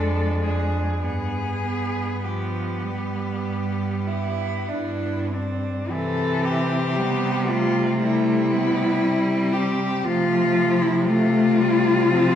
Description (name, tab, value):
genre	classical, lyrical piece for cello ensemble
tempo	48-59 BPM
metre	4/4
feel	rubato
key	C major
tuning	A4 = 440 Hz
part	rich cello	melody	0.0-12.4 s	D4 to A4	-24 LUFS	left 2 dB	none
part	rich cello	second line	0.0-12.4 s	F3 to E4	-27 LUFS	right 3 dB	none
part	rich cello	accompaniment	0.0-12.4 s	E3 to B3	-26 LUFS	left 2 dB	none
part	clear cello	bass	0.0-12.4 s	F2 to C3	-27 LUFS	equal	none
room	wet recital hall reverb, RT60 1.7 s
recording	heard from further back in the room, vinyl crackle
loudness	-20 LUFS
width	side -9 dB against mid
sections	0.0-5.9 A section; 5.9-12.4 B section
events	none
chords	0.0 Dm/F; 1.0 G; 5.9 C; 10.1 F/C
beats	| 1.02 2.25 3.48 4.70 | 5.89 6.97 8.01 9.03 | 10.05 11.08 12.10